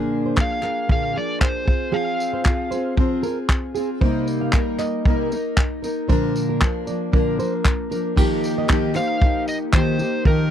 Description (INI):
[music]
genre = acoustic pop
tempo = 115 BPM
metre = 4/4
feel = swing 55% on 16ths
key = Eb major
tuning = A4 = 440 Hz
[part]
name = fingerpicked plugged-in steel-string acoustic guitar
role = accompaniment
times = 0.0-10.5 s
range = Bb2 to Bb4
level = -22 LUFS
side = left 1 dB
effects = double-tracked left and right
[part]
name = nylon-string guitar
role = arpeggios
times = 0.0-10.5 s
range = Ab4 to F5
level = -29 LUFS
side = right 7 dB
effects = none
[part]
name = overdriven slide guitar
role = melody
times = 0.4-2.9, 9.0-10.5 s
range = Bb4 to F5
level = -25 LUFS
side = equal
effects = none
[part]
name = vintage brush drum kit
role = drums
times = 0.4-10.4 s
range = crash cymbal, handclaps, kick drum, tambourine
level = -19 LUFS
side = equal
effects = none
[part]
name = group handclap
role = percussion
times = 0.4-9.9 s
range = none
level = -36 LUFS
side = left 6 dB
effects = none
[sound]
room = little or no reverb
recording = dry, close 1970s-style studio recording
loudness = -18 LUFS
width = side -9 dB against mid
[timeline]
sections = 0.0-8.2 A section; 8.2-10.5 B section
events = none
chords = 0.0 Bb7; 1.7 Fm; 4.0 Cm7; 6.1 Bb; 8.2 Ebadd9